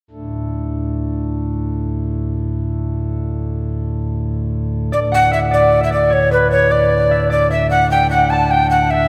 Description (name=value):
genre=medieval dance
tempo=100 BPM (dotted quarters)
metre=6/8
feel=straight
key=D major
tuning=A4 = 440 Hz
part: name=pipe organ, principal chorus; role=drone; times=0.1-9.1 s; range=D2 to A2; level=-22 LUFS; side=equal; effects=none
part: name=mellow tenor recorder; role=melody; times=4.9-9.1 s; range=B4 to A5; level=-16 LUFS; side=equal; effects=none
part: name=concert harp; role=second line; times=4.9-9.1 s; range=B4 to A5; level=-24 LUFS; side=equal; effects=none
room=wet cathedral reverb, RT60 4.2 s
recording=recorded in a church or concert hall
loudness=-17 LUFS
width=mono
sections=0.1-4.9 A section; 4.9-9.1 B section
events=none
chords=none